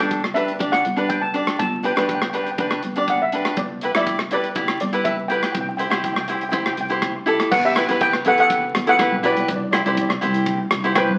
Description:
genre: calypso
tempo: 122 BPM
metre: 4/4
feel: straight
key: unclear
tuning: A4 = 439 Hz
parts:
  - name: steel pan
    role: melody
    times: 0.0-11.2 s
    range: F#4 to A5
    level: -24 LUFS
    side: equal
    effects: none
  - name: cavaquinho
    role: accompaniment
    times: 0.0-11.1 s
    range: D4 to D5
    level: -24 LUFS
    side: equal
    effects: none
  - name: upright bass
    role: bass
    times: 0.0-11.2 s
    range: G1 to G2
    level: -30 LUFS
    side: equal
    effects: none
  - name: tight metal drum kit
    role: drums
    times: 0.1-11.1 s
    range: crash cymbal, hi-hat, kick drum, rim click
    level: -28 LUFS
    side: equal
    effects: none
room: wet studio reverb, RT60 0.5 s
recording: very old 78 rpm record, vinyl crackle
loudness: -20 LUFS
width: mono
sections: 0.0-7.5 A section; 7.5-11.2 B section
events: none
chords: 0.0 G; 3.6 Em/G; 5.5 C; 7.5 Emadd9; 9.5 C

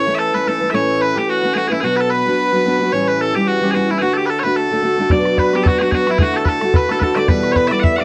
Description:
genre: celtic folk, Celtic reel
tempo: 220 BPM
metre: 4/4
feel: swing 56% on 8ths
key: D major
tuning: A4 = 440 Hz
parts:
  - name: loud bright bagpipes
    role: melody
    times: 0.0-8.0 s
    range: E4 to F#5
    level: -21 LUFS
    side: equal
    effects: none
  - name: accordion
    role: second line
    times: 0.0-8.0 s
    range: E4 to E5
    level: -26 LUFS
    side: equal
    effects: none
  - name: fingerpicked steel-string acoustic guitar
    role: accompaniment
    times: 0.0-8.0 s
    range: E2 to F#4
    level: -20 LUFS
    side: equal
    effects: none
  - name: Celtic harp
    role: second line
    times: 5.1-8.0 s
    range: E4 to E5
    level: -27 LUFS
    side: equal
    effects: none
  - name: bodhran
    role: percussion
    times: 5.1-8.0 s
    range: none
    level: -19 LUFS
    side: equal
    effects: none
room: small room ambience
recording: dry, close 1970s-style studio recording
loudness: -16 LUFS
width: mono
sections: 0.0-5.1 A section; 5.1-8.0 A section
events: none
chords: 0.0 A; 1.8 Bm; 2.9 A7; 4.0 D; 5.1 Bm; 6.2 D; 7.3 Em

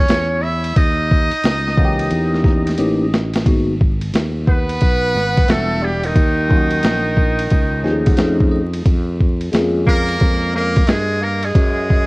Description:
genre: hip hop, jazz-hop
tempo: 89 BPM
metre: 4/4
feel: swing 65% on 16ths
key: G# minor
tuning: A4 = 440 Hz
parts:
  - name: trumpet with metal mute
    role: melody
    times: 0.0-12.1 s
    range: D#4 to E5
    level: -22 LUFS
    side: equal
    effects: analog delay
  - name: clear tenor saxophone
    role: second line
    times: 0.0-12.1 s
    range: D#3 to E4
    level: -23 LUFS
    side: right 2 dB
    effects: none
  - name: sustaining fretless electric bass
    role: bass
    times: 0.0-12.1 s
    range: E1 to G2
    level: -21 LUFS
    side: equal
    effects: none
  - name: boom bap sampler-style drum kit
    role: drums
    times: 0.1-12.1 s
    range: hi-hat, kick drum, ride cymbal, snare drum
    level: -16 LUFS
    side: equal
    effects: none
  - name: bell-like tine electric piano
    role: accompaniment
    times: 1.8-10.8 s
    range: E3 to A#5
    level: -20 LUFS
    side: left 1 dB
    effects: phaser
room: light reverb, digital ambience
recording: worn, warbling old tape, cassette tape, vinyl crackle, warbly pitch drift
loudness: -14 LUFS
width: side -24 dB against mid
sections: 0.0-3.5 A section; 3.5-12.1 B section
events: tine electric piano fill 2.1-3.5, 7.5-8.9; drum fill 2.8-3.5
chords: 0.0 C#m; 0.8 D#7b9; 3.5 G#m9; 5.5 Em7; 6.2 D#m7; 8.2 F7alt; 8.9 A#m7/E#; 11.6 F#sus2

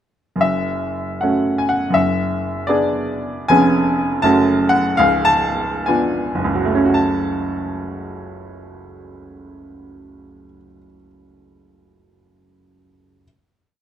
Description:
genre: classical, romantic character piece for solo piano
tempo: 50-85 BPM (dotted quarters)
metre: 6/8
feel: rubato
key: F# minor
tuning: A4 = 440 Hz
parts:
  - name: bright baby grand piano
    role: solo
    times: 0.4-13.3 s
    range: C#1 to A5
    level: -16 LUFS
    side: equal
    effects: none
room: light reverb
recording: dark, warm production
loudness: -15 LUFS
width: side -10 dB against mid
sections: 0.4-6.9 A section; 6.9-11.1 final chord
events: slowing down 2.7-6.9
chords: 0.4 F#m; 2.0 G#m7b5/F#; 3.5 C#7/E#; 4.2 F#m; 5.0 C#7b9; 6.9 F#m

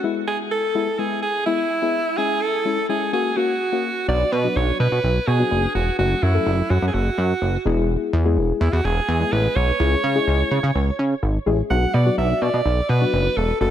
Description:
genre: dance-pop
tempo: 126 BPM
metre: 4/4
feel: straight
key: B dorian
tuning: A4 = 440 Hz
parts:
  - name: deep mellow chord stab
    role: accompaniment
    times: 0.0-13.7 s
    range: F#3 to A4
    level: -25 LUFS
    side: left 5 dB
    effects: chorus, low-pass filter
  - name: edgy alto saxophone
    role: melody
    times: 0.3-13.7 s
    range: E4 to F#5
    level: -22 LUFS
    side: right 2 dB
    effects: tape echo
  - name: chorused synth bass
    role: bass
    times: 4.1-13.7 s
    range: E1 to C#3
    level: -19 LUFS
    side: equal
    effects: none
room: moderate lush hall reverb, RT60 2.8 s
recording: dreamy mix soaked in reverb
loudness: -18 LUFS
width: side -10 dB against mid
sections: 0.0-4.1 A section; 4.1-13.7 B section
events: build-up 0.0-4.1; drop 4.1-13.7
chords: 0.0 E; 2.2 C#m; 3.1 F#; 4.1 Bm; 6.0 F#m; 7.7 E; 9.8 C#m; 11.7 Bm

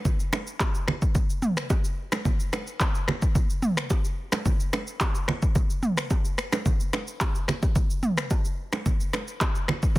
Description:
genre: afrobeats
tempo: 109 BPM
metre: 4/4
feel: straight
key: none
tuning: none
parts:
  - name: deep house drum kit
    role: drums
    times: 0.1-10.0 s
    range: finger snaps, handclaps, kick drum, rim click, shaker, toms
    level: -24 LUFS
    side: equal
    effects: overdrive
  - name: congas and bongos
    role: percussion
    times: 0.1-10.0 s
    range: none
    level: -30 LUFS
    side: right 3 dB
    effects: none
room: digital ambience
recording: dense, heavily limited modern master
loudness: -23 LUFS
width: side -18 dB against mid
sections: 0.0-10.0 A section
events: none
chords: none

